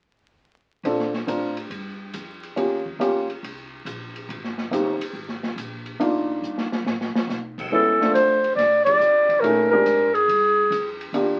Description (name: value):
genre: jazz, small-group swing and bop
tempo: 140 BPM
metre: 4/4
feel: swing 67% on 8ths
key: Bb major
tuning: A4 = 442 Hz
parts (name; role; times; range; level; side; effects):
- dark baby grand piano; accompaniment; 0.8-11.4 s; Ab3 to Bb4; -25 LUFS; equal; none
- upright bass; bass; 0.8-11.4 s; G1 to C3; -42 LUFS; equal; none
- open jazz drum kit; drums; 0.8-11.3 s; crash cymbal, hi-hat, kick drum, ride cymbal, snare drum; -33 LUFS; equal; none
- breathy clarinet; melody; 7.7-11.0 s; Ab4 to D5; -19 LUFS; equal; none
room: wet small room ambience, RT60 0.5 s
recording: very old 78 rpm record, vinyl crackle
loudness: -22 LUFS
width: mono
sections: 0.8-7.7 A section; 7.7-11.4 B section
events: drum fill 6.4-7.3; band accent 8.8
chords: 0.8 Bbmaj9; 2.6 Eb7; 4.3 Abmaj9; 6.0 Cm11; 6.8 Asus2; 7.7 Dm13; 9.4 Bb13